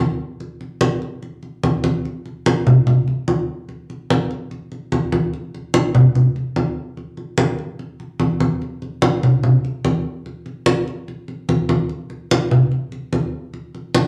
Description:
jazz; 146 BPM; 4/4; straight
congas; percussion; 0.4-14.1 s; -19 LUFS; equal
wet club reverb, RT60 0.8 s; -19 LUFS; mono
0.0-2.0 A section; 2.0-14.1 A section

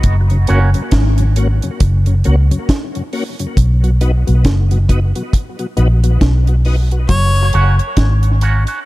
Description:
dub reggae; 68 BPM; 4/4; swing 60% on 16ths; F# major; A4 = 441 Hz
vintage muted fingered electric bass; bass; 0.0-8.6 s; F#1 to C#2; -12 LUFS; equal
deep reggae drum kit; drums; 0.0-8.8 s; hi-hat, kick drum, snare drum; -17 LUFS; equal
tonewheel organ; accompaniment; 0.3-8.8 s; F#2 to F#4; -24 LUFS; left 2 dB; chorus vibrato, slow rotary speaker, high-pass filter, dub echo
electric guitar with an envelope filter; accompaniment; 0.5-0.7, 7.5-8.8 s; A#3 to F#4; -23 LUFS; right 4 dB; tremolo, high-pass filter, dub echo
bright harmonica; melody; 7.1-7.5 s; C#5; -20 LUFS; equal; dub echo
semi-hollow electric guitar; arpeggios; 7.1-7.3 s; F#3; -27 LUFS; left 6 dB; lush chorus, dub echo
small room ambience; echo-heavy mix; -11 LUFS; side -18 dB against mid
0.0-8.9 A section
break 0.0-7.1; filter sweep 3.6-8.9
0.0 F#; 3.6 B; 7.1 F#

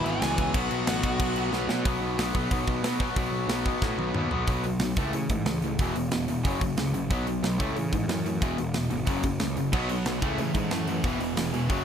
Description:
punk rock; 183 BPM; 4/4; straight; A4 = 438 Hz
nasal lead guitar with a parked wah; melody; 0.0-1.5 s; F#4 to G#5; -32 LUFS; left 1 dB; overdrive
cranked stack guitar; riff; 0.0-11.8 s; E2 to B3; -31 LUFS; left 12 dB; overdrive
distorted electric guitar; riff; 0.0-11.8 s; E2 to B3; -32 LUFS; right 10 dB; overdrive
overdriven electric guitar; riff; 0.0-1.9, 9.7-11.8 s; E2 to B3; -34 LUFS; right 1 dB
fuzz picked electric bass; bass; 0.0-11.8 s; E1 to C#3; -31 LUFS; right 1 dB; overdrive
tight metal drum kit; drums; 0.1-11.8 s; crash cymbal, hi-hat, kick drum, snare drum, toms; -30 LUFS; right 1 dB
little or no reverb; -25 LUFS; side -8 dB against mid
0.0-1.9 A section; 1.9-4.5 B section; 4.5-11.8 C section
drum fill 1.5-1.9, 3.8-4.5
0.0 E; 0.5 B5; 5.0 A/C#; 5.8 E5; 6.4 F#5; 7.1 B5; 7.6 A/C#; 8.4 E; 9.1 F#5; 9.7 B5; 10.2 A/C#; 11.0 E5

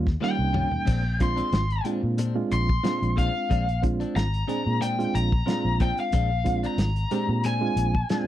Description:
straight-eighth soul blues; 92 BPM; 4/4; swing 53% on 16ths; A4 = 441 Hz
barky reed electric piano; accompaniment; 0.0-8.3 s; G3 to Ab4; -29 LUFS; right 5 dB; fast tremolo
vintage muted fingered electric bass; bass; 0.0-8.0 s; Ab1 to Bb2; -26 LUFS; equal
warm soul drum kit; drums; 0.1-8.3 s; crash cymbal, hi-hat, kick drum, snare drum, toms; -27 LUFS; equal
lead guitar through a small cranked amp; melody; 0.2-8.3 s; F5 to C6; -29 LUFS; left 3 dB; overdrive, slapback echo
direct-recorded clean electric guitar; stabs; 0.2-8.3 s; Bb2 to F4; -33 LUFS; left 6 dB; lush chorus
small room ambience; dry, close 1970s-style studio recording; -22 LUFS; side -12 dB against mid
0.0-8.3 A section
lead electric guitar solo 0.0-8.3; drum fill 0.2-0.9
0.0 Eb9; 0.9 Bb9

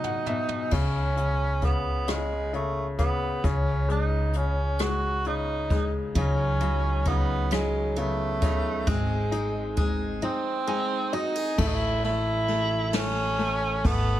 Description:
six-eight pop ballad; 44 BPM (dotted quarters); 6/8; straight; A4 = 441 Hz
warm tenor saxophone; melody; 0.0-14.2 s; G#3 to F#4; -28 LUFS; right 2 dB
bright upright piano; accompaniment; 0.0-14.2 s; B2 to G#5; -31 LUFS; left 4 dB
jazz brush drum kit; drums; 0.0-14.1 s; crash cymbal, hi-hat, kick drum, ride cymbal, rim click, snare drum, toms; -29 LUFS; equal
upright bass; bass; 0.7-14.2 s; G#1 to C#2; -28 LUFS; equal
picked steel-string acoustic guitar; arpeggios; 6.2-11.7 s; F#3 to G#4; -34 LUFS; right 4 dB; tape echo
light reverb, small room ambience; -24 LUFS; side -13 dB against mid
0.7-11.6 A section; 11.6-14.2 B section
drum fill 0.0-0.7; upright piano fill 0.0-0.7, 10.2-11.6
0.0 B5; 0.7 Aadd9/C# (rootless); 3.4 C#sus2; 6.2 B/C#; 8.9 G#; 11.6 A

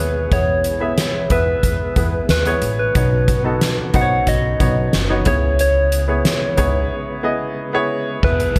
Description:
piano-driven pop; 91 BPM; 4/4; straight; A4 = 440 Hz
soft struck synth lead; melody; 0.0-8.6 s; B4 to F#5; -23 LUFS; equal; chorus, plate reverb
clear grand piano; accompaniment; 0.0-8.6 s; B2 to F#5; -25 LUFS; equal; plate reverb
mellow tonewheel organ; sustained chords; 0.0-8.6 s; B2 to G#4; -33 LUFS; equal
upright bass; bass; 0.0-8.6 s; F#1 to E2; -23 LUFS; equal
soft-mallet drum kit; drums; 0.3-8.6 s; crash cymbal, hi-hat, kick drum, snare drum; -22 LUFS; equal
moderate studio reverb, RT60 0.8 s; -18 LUFS; mono
0.0-8.2 A section
break 6.9-8.2
0.0 E; 3.0 Badd9; 5.3 C#m7

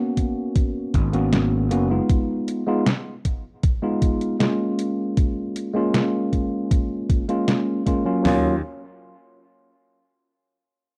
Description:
vaporwave; 78 BPM; 4/4; straight; Eb minor; A4 = 440 Hz
tine electric piano; accompaniment; 0.0-8.5 s; Gb3 to Gb4; -25 LUFS; equal; subtle chorus, vintage 12-bit sampler grit, tape echo
detuned 8-bit digital drum machine; drums; 0.2-8.4 s; hi-hat, kick drum, snare drum, toms; -23 LUFS; equal
detuned 8-bit digital drum machine; drums; 0.2-8.0 s; hi-hat, snare drum; -26 LUFS; equal
gritty slap bass; bass; 0.9-2.0, 8.2-8.6 s; Gb1 to Eb2; -25 LUFS; equal; overdrive
little or no reverb; rough home demo mix, cassette tape; -22 LUFS; mono
0.0-8.3 A section; 8.3-11.0 B section
0.0 Abm11; 2.1 Db9; 4.8 Gbmaj9 (rootless); 8.3 Ebm9

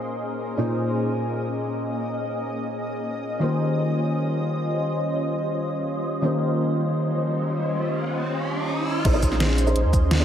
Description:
liquid drum and bass; free time; Bb dorian; A4 = 439 Hz
felt-muted upright piano; accompaniment; 0.0-10.2 s; Bb2 to C5; -26 LUFS; equal; ensemble chorus, diffuse ambient delay
shimmering ambient pad; sustained chords; 0.0-10.2 s; G3 to Eb5; -27 LUFS; equal; chorus, built-in reverb, sidechain pumping
riser; sound effects; 7.1-9.1 s; -31 LUFS; equal
warm sub bass; bass; 9.1-10.2 s; Bb1 to Eb2; -22 LUFS; equal
electronic kick drum; drums; 9.1-10.0 s; -21 LUFS; equal; overdrive
pop drum kit; drums; 9.1-10.2 s; crash cymbal, hi-hat, shaker, snare drum; -25 LUFS; equal; overdrive, low-pass filter on snare, low-pass filter on hats, low-pass filter on cymbals, low-pass filter on perc, low-pass filter on room
moderate plate reverb, RT60 2.0 s; dreamy mix soaked in reverb; -22 LUFS; side -9 dB against mid
0.0-9.1 A section; 9.1-10.2 B section
riser 7.1-9.1; drop 9.1-10.2
0.0 Bbm11; 3.4 Eb13; 9.1 Bbm11

